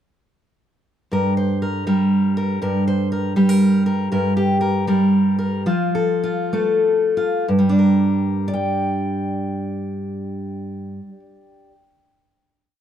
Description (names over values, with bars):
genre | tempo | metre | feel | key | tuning
folk, solo fingerstyle acoustic guitar | 89-123 BPM | 3/4 | rubato | G minor | A4 = 440 Hz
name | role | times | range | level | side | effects
fingerpicked steel-string acoustic guitar | solo | 1.1-11.7 s | G2 to G5 | -17 LUFS | equal | none
room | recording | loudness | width
light reverb | dark, warm production | -17 LUFS | side -10 dB against mid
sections
1.1-7.5 interlude; 7.5-11.5 final chord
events
slowing down 4.1-7.5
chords
1.1 Gm; 5.7 F; 7.5 Gm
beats
| 1.12 1.63 2.13 | 2.63 3.12 3.61 | 4.11 4.60 5.12 | 5.66 6.22 6.83 | 7.49 8.16 8.81 | 9.47 10.13 10.81